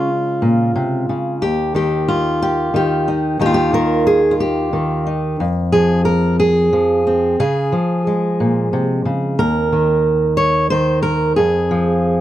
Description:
folk, solo fingerstyle acoustic guitar; 60 BPM (dotted quarters); 6/8; straight; A4 = 439 Hz
fingerpicked steel-string acoustic guitar; solo; 0.0-12.2 s; Eb2 to Db5; -14 LUFS; equal
light reverb; dark, warm production; -14 LUFS; side -13 dB against mid
0.0-1.4 A section; 1.4-12.2 B section
0.0 Dbmaj7; 1.4 N.C.; 5.4 Fm; 7.4 Db; 9.4 N.C.; 11.4 Fm

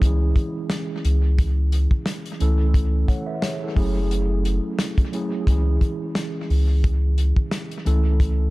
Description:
hip hop, boom-bap hip-hop; 88 BPM; 4/4; swing 55% on 16ths; C# minor; A4 = 436 Hz
mellow tine electric piano; accompaniment; 0.0-8.5 s; E3 to F#5; -27 LUFS; right 1 dB; medium stereo tremolo, cassette tape, high-pass filter, low-pass filter, dub echo
soft dub sub bass; bass; 0.0-8.5 s; F#1 to C#2; -19 LUFS; equal
warm soul drum kit; drums; 0.0-8.4 s; hi-hat, kick drum, snare drum; -22 LUFS; equal
little or no reverb; echo-heavy mix; -19 LUFS; side -20 dB against mid
0.0-8.5 A section
0.0 C#m; 2.4 A/C#; 3.8 F#m7; 5.5 C#m; 7.9 A/C#

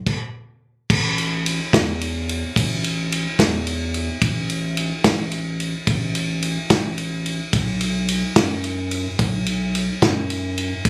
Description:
indie folk with a building arrangement; 72 BPM (dotted quarters); 6/8; straight; A4 = 441 Hz
natural country drum kit; drums; 0.1-10.9 s; crash cymbal, kick drum, ride cymbal, snare drum; -23 LUFS; equal
round analog bass; bass; 0.9-10.9 s; A1 to F#2; -27 LUFS; equal
light reverb; recorded on a phone in the room, studio ambience, compression; -22 LUFS; mono
0.9-10.9 A section
stop 0.1-0.9

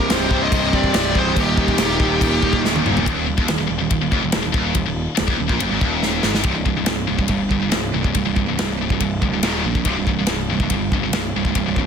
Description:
heavy metal; 141 BPM; 4/4; straight; C minor; A4 = 442 Hz
high-gain lead guitar; melody; 0.0-2.6 s; G4 to Eb5; -23 LUFS; equal; distortion, ping-pong delay
high-gain lead guitar; second line; 0.0-2.6 s; Eb4 to C5; -28 LUFS; right 3 dB; distortion, ping-pong delay
dark chamber string section; sustained chords; 0.0-3.0 s; Eb3 to C5; -32 LUFS; left 1 dB
crunchy overdriven guitar; riff; 0.0-3.1 s; C2 to Eb3; -26 LUFS; right 2 dB
high-gain distorted guitar; riff; 0.0-11.9 s; C2 to Eb3; -24 LUFS; right 13 dB; distortion
scooped high-gain guitar; riff; 0.0-11.9 s; C2 to Eb3; -24 LUFS; left 14 dB; distortion
fuzz picked electric bass; bass; 0.0-11.9 s; C1 to Bb1; -24 LUFS; left 1 dB; overdrive
modern studio drum kit; drums; 0.1-11.9 s; crash cymbal, kick drum, ride cymbal, snare drum, toms; -21 LUFS; equal
small room ambience; dense, heavily limited modern master; -17 LUFS; side -7 dB against mid
0.0-3.1 A section; 3.1-6.5 B section; 6.5-11.9 C section
drum fill 2.6-3.1, 6.0-6.5
0.0 Cm; 1.4 Eb; 3.1 Eb5; 6.5 C5; 9.4 Eb5; 9.9 C5

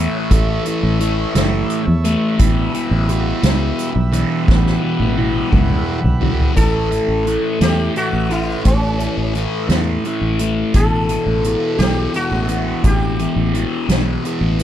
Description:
psychedelic rock; 57 BPM (dotted quarters); 6/8; straight; A mixolydian; A4 = 439 Hz
combo organ; sustained chords; 0.0-6.5 s; G3 to F#5; -26 LUFS; right 4 dB
thick fuzz guitar; riff; 0.0-14.6 s; E2 to A3; -20 LUFS; left 1 dB; distortion, phaser
fingered electric bass; bass; 0.0-14.6 s; F#1 to E2; -18 LUFS; equal
soft-mallet drum kit; drums; 0.3-14.6 s; hi-hat, kick drum, snare drum, toms; -18 LUFS; equal
sitar; melody; 6.6-14.2 s; C#4 to A4; -22 LUFS; equal; slapback echo
little or no reverb; -15 LUFS; side -11 dB against mid
0.0-6.6 A section; 6.6-14.6 B section
drum fill 4.5-6.6
0.0 A; 2.4 Em/A; 6.6 A5; 10.7 Em/A

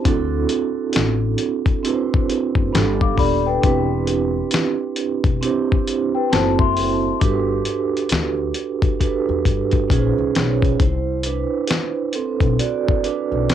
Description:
lo-fi hip hop; 67 BPM; 4/4; swing 61% on 16ths; A4 = 440 Hz
vibraphone with soft mallets; accompaniment; 0.0-13.5 s; B3 to D5; -20 LUFS; right 7 dB; cassette tape, low-pass filter
upright bass; bass; 0.1-13.5 s; D#1 to G2; -23 LUFS; left 3 dB; tube saturation
dusty soul sampler-style drum kit; drums; 0.1-13.5 s; hi-hat, kick drum, snare drum; -20 LUFS; left 2 dB; cassette tape
large celesta; second line; 3.0-7.2 s; B4 to D6; -23 LUFS; left 11 dB; low-pass filter, analog delay
light reverb; home recording on cassette; -17 LUFS; side -10 dB against mid
0.0-10.8 A section; 10.8-13.5 B section
drum fill 9.0-10.8; vibraphone solo 10.8-13.5
0.1 D7; 2.7 G7; 3.6 Cmaj9/E; 6.3 F#m7b5; 7.2 Gmaj7; 9.9 Bbm11; 10.8 Cmaj9#11

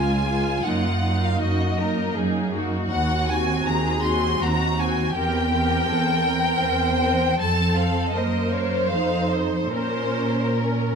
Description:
classical, slow romantic movement for string orchestra; 79 BPM; 3/4; rubato; A4 = 440 Hz
warm symphonic violin section; melody; 0.0-11.0 s; Bb4 to C6; -25 LUFS; left 1 dB
warm symphonic violin section; second line; 0.0-11.0 s; F4 to C5; -28 LUFS; left 2 dB
rich symphonic viola section; accompaniment; 0.0-10.9 s; Ab3 to Bb4; -27 LUFS; right 1 dB
warm symphonic cello section; bass; 0.0-11.0 s; Db2 to Bb2; -24 LUFS; right 2 dB
light reverb; close, detailed microphones; -20 LUFS; side -6 dB against mid
0.0-11.0 A section
0.0 Db; 0.7 Ebm/Gb; 2.9 Cdim/Eb; 5.2 C7/E; 7.4 F; 8.2 Gb; 8.9 F7; 9.7 Bbm

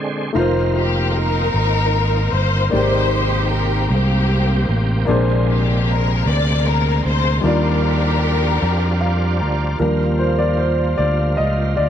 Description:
slow gospel; 51 BPM (dotted quarters); 6/8; straight; Eb major; A4 = 440 Hz
warm grand piano; accompaniment; 0.0-11.9 s; Ab2 to Bb5; -22 LUFS; left 2 dB; tape echo
bright tonewheel organ; sustained chords; 0.0-11.9 s; C3 to G4; -25 LUFS; right 2 dB; slow rotary speaker, overdrive, chorus vibrato
fingered electric bass; bass; 0.4-11.9 s; F1 to F2; -18 LUFS; equal
warm studio string section; melody; 0.8-9.4 s; Bb3 to D5; -22 LUFS; left 3 dB; tape echo
mellow French horn section; sustained chords; 9.8-11.9 s; F3 to F4; -30 LUFS; right 3 dB
little or no reverb; echo-heavy mix; -15 LUFS; side -9 dB against mid
0.4-9.8 A section; 9.8-11.9 B section
break 0.0-0.4; grand piano fill 8.6-9.8; grand piano solo 9.8-11.9
0.4 F7sus4; 2.7 Abmaj9#11; 5.1 Bb9; 7.4 Ebmaj9

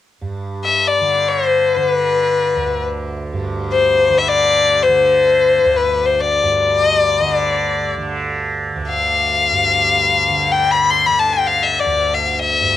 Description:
indian classical; free time; D raga bageshri; A4 = 439 Hz
tanpura; drone; 0.2-12.8 s; D2 to D3; -22 LUFS; right 3 dB; cassette tape
bright violin; melody; 0.6-12.8 s; B4 to C6; -14 LUFS; left 4 dB
moderate studio reverb, RT60 0.6 s; home recording on cassette; -13 LUFS; side -12 dB against mid
0.2-12.8 A section

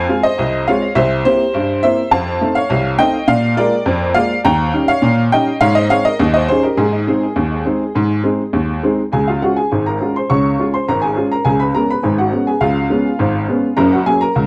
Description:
ragtime piano; 103 BPM; 2/4; straight; Ab major, Db major from 9.1 s; A4 = 441 Hz
clear upright piano; solo; 0.0-14.5 s; Gb1 to Db6; -16 LUFS; equal; tape echo
moderate studio reverb, RT60 0.6 s; dark, warm production; -16 LUFS; mono
0.0-9.1 A section; 9.1-14.5 B section
0.0 Fm; 1.0 C7; 2.1 F7; 3.3 Bb7; 4.5 Eb7; 5.6 Ab; 6.2 Eb7; 6.8 Ab; 9.1 Db; 11.5 Db7; 13.8 Gb

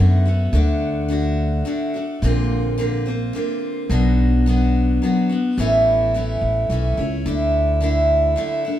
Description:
acoustic folk duo or small band; 107 BPM; 3/4; straight; D major; A4 = 440 Hz
picked steel-string acoustic guitar; accompaniment; 0.0-8.8 s; A2 to F#4; -19 LUFS; equal
upright bass; bass; 0.0-8.3 s; A1 to F#2; -19 LUFS; equal
moderate small room reverb, RT60 0.5 s; band playing live in one room; -17 LUFS; side -12 dB against mid
0.5-8.8 A section
0.0 D6; 0.5 D; 2.2 Bbadd9; 3.9 Bm; 5.6 A; 7.3 Dsus2

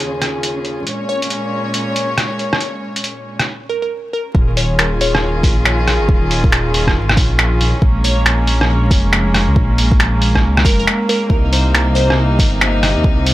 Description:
future garage; 138 BPM; 4/4; swing 63% on 16ths; Bb minor; A4 = 440 Hz
rich chamber string section; sustained chords; 0.0-13.3 s; Eb2 to Db5; -20 LUFS; equal; sidechain pumping
lo-fi sampler-style drum kit; drums; 0.0-13.3 s; finger snaps, hi-hat, rim click; -17 LUFS; equal
flickering grainy texture; texture; 0.0-3.5 s; Db4 to Db5; -32 LUFS; right 1 dB; built-in reverb
glassy wavetable pluck; melody; 1.1-12.4 s; Bb4 to Db5; -24 LUFS; equal; chorus, tape echo
dark detuned saw bass; bass; 4.3-13.3 s; Eb1 to Eb2; -16 LUFS; equal; sidechain pumping
electronic kick drum; drums; 4.3-13.2 s; -14 LUFS; equal; overdrive
little or no reverb; dry, gritty hardware recording, vinyl crackle; -13 LUFS; side -16 dB against mid
0.0-4.3 A section; 4.3-13.3 B section
0.0 Eb9sus4; 0.9 Bbm7; 4.3 Eb9sus4; 7.8 Bbm7; 11.3 Cm7

